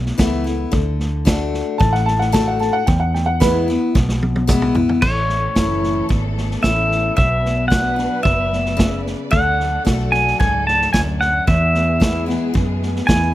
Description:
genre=honky-tonk and classic country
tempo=112 BPM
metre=4/4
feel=straight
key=A major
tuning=A4 = 440 Hz
part: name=picked steel-string acoustic guitar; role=accompaniment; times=0.0-13.3 s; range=E2 to F#4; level=-22 LUFS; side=left 3 dB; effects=none
part: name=vintage muted fingered electric bass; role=bass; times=0.0-13.3 s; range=F#1 to F#2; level=-21 LUFS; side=right 1 dB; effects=none
part: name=vintage drum kit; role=drums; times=0.1-13.2 s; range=crash cymbal, hi-hat, kick drum, snare drum, toms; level=-19 LUFS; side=right 1 dB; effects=none
part: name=dark upright piano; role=second line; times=1.8-3.7 s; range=B4 to A5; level=-20 LUFS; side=right 1 dB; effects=none
part: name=pedal steel guitar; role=melody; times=5.0-13.3 s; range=C#5 to A5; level=-18 LUFS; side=equal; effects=none
part: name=warm studio string section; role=sustained chords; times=5.0-13.3 s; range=E3 to D5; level=-30 LUFS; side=equal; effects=none
room=little or no reverb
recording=none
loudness=-15 LUFS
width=side -14 dB against mid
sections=0.0-5.0 A section; 5.0-13.3 B section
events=upright piano solo 0.0-5.0; drum fill 3.9-5.0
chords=0.0 Asus2; 0.7 D; 2.9 E; 5.0 A; 7.2 Bm; 9.3 D; 11.5 E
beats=0.19 | 0.72 1.26 1.80 2.34 | 2.87 3.41 3.95 4.49 | 5.02 5.56 6.10 6.64 | 7.17 7.71 8.25 8.79 | 9.32 9.86 10.40 10.94 | 11.47 12.01 12.54 13.08

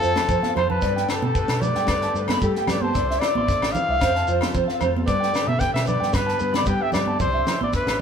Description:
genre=highlife guitar band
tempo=113 BPM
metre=4/4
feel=swing 53% on 16ths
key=G mixolydian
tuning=A4 = 440 Hz
part: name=breathy trumpet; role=melody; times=0.0-8.0 s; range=A4 to G5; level=-24 LUFS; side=left 1 dB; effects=none
part: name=nylon-string guitar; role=accompaniment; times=0.0-8.0 s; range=E2 to G4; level=-31 LUFS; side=left 6 dB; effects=none
part: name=combo organ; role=sustained chords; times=0.0-8.0 s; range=B3 to C5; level=-36 LUFS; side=equal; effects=none
part: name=electric guitar through a small old amp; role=arpeggios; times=0.0-7.7 s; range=A4 to C6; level=-26 LUFS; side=right 2 dB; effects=none
part: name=hollow-body short-scale fingered electric bass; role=bass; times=0.0-8.0 s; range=A1 to G3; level=-28 LUFS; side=equal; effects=none
part: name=shekere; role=percussion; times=0.0-7.9 s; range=none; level=-32 LUFS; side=right 1 dB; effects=none
part: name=tight funk drum kit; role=drums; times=0.2-8.0 s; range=kick drum, snare drum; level=-28 LUFS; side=equal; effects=none
part: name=agogo bells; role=percussion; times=0.2-8.0 s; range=none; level=-34 LUFS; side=left 2 dB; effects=none
part: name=congas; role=percussion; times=0.2-7.7 s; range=none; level=-30 LUFS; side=right 5 dB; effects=none
room=moderate stone room reverb, RT60 1.2 s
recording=band playing live in one room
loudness=-19 LUFS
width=side -7 dB against mid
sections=0.0-8.0 A section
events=drum fill 0.4-0.8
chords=0.0 F; 0.8 Gadd9; 2.9 Cadd9; 4.0 F; 5.1 Gadd9; 7.2 Cadd9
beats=0.28 | 0.81 1.35 1.88 2.41 | 2.94 3.48 4.01 4.54 | 5.07 5.60 6.13 6.67 | 7.20 7.73

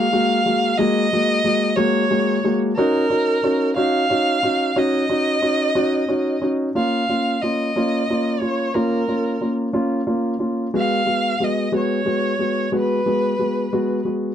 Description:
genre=pop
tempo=60 BPM (dotted quarters)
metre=6/8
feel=straight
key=unclear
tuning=A4 = 439 Hz
part: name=rich violin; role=melody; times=0.0-14.0 s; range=A#4 to E#5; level=-21 LUFS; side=right 1 dB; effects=none
part: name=dark upright piano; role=accompaniment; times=0.0-14.3 s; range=G#3 to F#4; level=-19 LUFS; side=left 1 dB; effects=none
room=little or no reverb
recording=dry, close 1970s-style studio recording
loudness=-17 LUFS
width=side -9 dB against mid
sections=0.0-6.8 A section; 6.8-14.3 B section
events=none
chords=0.0 F#add9; 2.8 D#m7; 6.8 A#m; 10.7 G#m7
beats=| 0.79 1.78 | 2.78 3.77 | 4.77 5.76 | 6.75 7.75 | 8.75 9.74 | 10.74 11.73 | 12.73 13.72

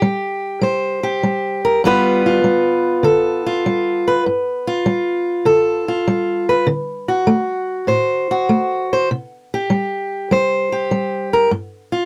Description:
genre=blues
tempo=99 BPM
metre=4/4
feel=swing 68% on 8ths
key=G mixolydian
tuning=A4 = 442 Hz
part: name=fingerpicked steel-string acoustic guitar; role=solo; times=0.0-12.1 s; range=G2 to C5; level=-18 LUFS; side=equal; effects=none
room=light reverb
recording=close, detailed microphones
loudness=-18 LUFS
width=mono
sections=0.0-12.1 A section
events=none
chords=0.0 C5; 1.8 G7; 6.7 D7; 9.1 C5; 11.5 G7(no3)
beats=0.00 0.61 1.22 | 1.82 2.43 3.04 3.64 | 4.25 4.86 5.46 6.07 | 6.67 7.28 7.88 8.49 | 9.09 9.70 10.30 10.91 | 11.52

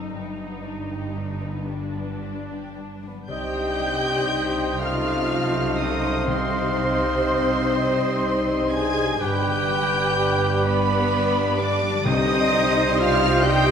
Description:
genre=classical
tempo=36-44 BPM (dotted quarters)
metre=6/8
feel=rubato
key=C minor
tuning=A4 = 440 Hz
part: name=warm symphonic violin section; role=melody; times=0.0-13.7 s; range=B4 to Ab6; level=-29 LUFS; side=equal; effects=none
part: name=warm studio violin section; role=second line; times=0.0-13.7 s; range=G3 to Ab5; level=-32 LUFS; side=left 3 dB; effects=none
part: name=rich symphonic viola section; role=accompaniment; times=0.0-13.7 s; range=B3 to Ab4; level=-29 LUFS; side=equal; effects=none
part: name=concert harp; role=arpeggios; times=0.0-13.7 s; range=F#2 to C5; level=-32 LUFS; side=left 7 dB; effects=none
part: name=rich studio double bass section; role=bass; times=0.0-13.7 s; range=F#1 to C2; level=-31 LUFS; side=right 2 dB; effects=none
part: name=warm studio cello section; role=bass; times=0.0-13.7 s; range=F#2 to C3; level=-30 LUFS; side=right 2 dB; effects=none
part: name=clear clarinet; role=second line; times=3.3-13.7 s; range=B4 to F5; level=-31 LUFS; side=left 2 dB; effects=none
part: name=large flute ensemble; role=second line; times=3.3-13.7 s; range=B4 to Ab5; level=-30 LUFS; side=left 1 dB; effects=none
part: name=warm cor anglais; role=second line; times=3.3-13.7 s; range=D5 to Eb5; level=-32 LUFS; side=right 2 dB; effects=none
part: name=mellow bassoon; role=accompaniment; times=3.3-13.7 s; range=G3 to C4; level=-31 LUFS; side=right 1 dB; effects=none
part: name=mellow trombone section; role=sustained chords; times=3.3-13.7 s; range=Gb2 to A3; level=-32 LUFS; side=right 3 dB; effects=none
part: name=warm French horn section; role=sustained chords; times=3.3-13.7 s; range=C4 to G4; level=-31 LUFS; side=left 3 dB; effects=none
part: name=dark trumpet section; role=stabs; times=3.3-13.7 s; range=B4 to C5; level=-29 LUFS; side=right 4 dB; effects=none
part: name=timpani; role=percussion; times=6.3-13.4 s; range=C3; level=-30 LUFS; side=equal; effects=none
room=wet scoring stage reverb, RT60 1.9 s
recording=none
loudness=-20 LUFS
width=side -7 dB against mid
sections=0.0-3.3 A section; 3.3-13.7 B section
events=none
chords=0.1 G; 3.3 Cm; 4.8 Cdim7; 6.3 Cm; 9.2 G; 12.1 Cm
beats=| 0.11 1.70 | 3.30 4.82 | 6.28 7.76 | 9.21 10.65 | 12.06 13.46

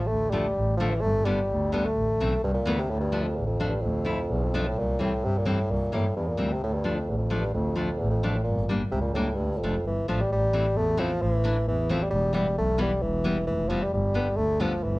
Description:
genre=klezmer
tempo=130 BPM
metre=2/4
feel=straight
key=D minor, A minor from 10.3 s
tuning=A4 = 440 Hz
part: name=mellow bassoon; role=melody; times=0.0-15.0 s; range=E2 to A3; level=-27 LUFS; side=equal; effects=tape echo
part: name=clear double bass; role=bass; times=0.1-15.0 s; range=E1 to G2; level=-27 LUFS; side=equal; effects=none
part: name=nylon-string guitar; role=accompaniment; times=0.3-14.7 s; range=D3 to E4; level=-30 LUFS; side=left 2 dB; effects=none
room=moderate small room reverb, RT60 0.5 s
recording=cassette tape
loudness=-24 LUFS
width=side -20 dB against mid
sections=0.0-2.9 A section; 2.9-10.3 B section; 10.3-15.0 C section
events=speeding up 0.0-15.0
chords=0.0 Dm; 1.0 G; 2.0 Am; 2.9 Dm; 4.8 C; 6.6 Dm; 8.5 Gm; 9.4 Dm; 10.3 Am; 12.1 Em; 13.9 G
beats=| 0.10 0.57 | 1.04 1.51 | 1.98 2.44 | 2.91 3.38 | 3.84 4.31 | 4.77 5.24 | 5.70 6.16 | 6.62 7.09 | 7.55 8.01 | 8.47 8.93 | 9.39 9.85 | 10.30 10.76 | 11.21 11.67 | 12.12 12.58 | 13.03 13.48 | 13.93 14.38 | 14.83

